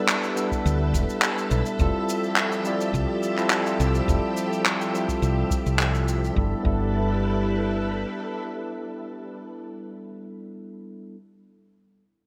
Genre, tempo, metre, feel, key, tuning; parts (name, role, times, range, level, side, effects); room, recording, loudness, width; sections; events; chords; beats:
sunset chillout; 105 BPM; 4/4; straight; G mixolydian; A4 = 441 Hz
bright tine electric piano; accompaniment; 0.0-11.2 s; G3 to D5; -30 LUFS; equal; low-pass filter, delay
soft string machine; sustained chords; 0.0-9.4 s; F3 to E5; -32 LUFS; equal; ensemble chorus
handclaps and shaker; drums; 0.1-6.3 s; -28 LUFS; equal; gated reverb
electronic kick drum; drums; 0.5-6.8 s; -29 LUFS; equal; overdrive
woody fretless electric bass; bass; 0.7-8.0 s; E1 to D2; -27 LUFS; equal
moderate plate reverb, RT60 2.2 s; bright 1980s-style digital production; -24 LUFS; mono
0.0-6.4 A section; 6.4-8.7 B section
filter sweep on fretless electric bass 0.0-6.4; filter sweep on tine electric piano 0.0-6.4
0.0 G69; 1.8 Fmaj9; 6.4 G69
0.08 0.65 1.22 | 1.79 2.37 2.94 3.51 | 4.08 4.65 5.22 5.79 | 6.37 6.94 7.51 8.08